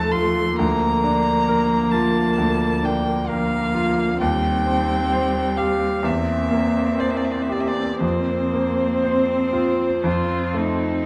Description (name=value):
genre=classical, slow romantic movement for piano quartet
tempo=58-66 BPM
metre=4/4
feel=rubato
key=Bb major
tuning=A4 = 440 Hz
part: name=rich violin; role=melody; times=0.0-11.0 s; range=C5 to C6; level=-26 LUFS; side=equal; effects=none
part: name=rich cello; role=second line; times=0.0-11.1 s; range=F3 to F4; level=-29 LUFS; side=equal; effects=none
part: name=clear grand piano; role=accompaniment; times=0.0-11.1 s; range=D2 to C5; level=-25 LUFS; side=equal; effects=none
part: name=warm viola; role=accompaniment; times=0.0-11.1 s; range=A3 to C4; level=-27 LUFS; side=equal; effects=none
room=wet recital hall reverb, RT60 1.6 s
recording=dark, warm production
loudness=-21 LUFS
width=mono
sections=0.0-11.1 A section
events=none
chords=0.0 F7/Eb; 0.6 Bb/D; 4.2 Cm/Eb; 6.1 C7/E; 8.0 Fsus4; 10.1 F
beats=| 0.56 1.47 2.37 3.30 | 4.21 5.13 6.05 7.01 | 8.03 9.05 10.05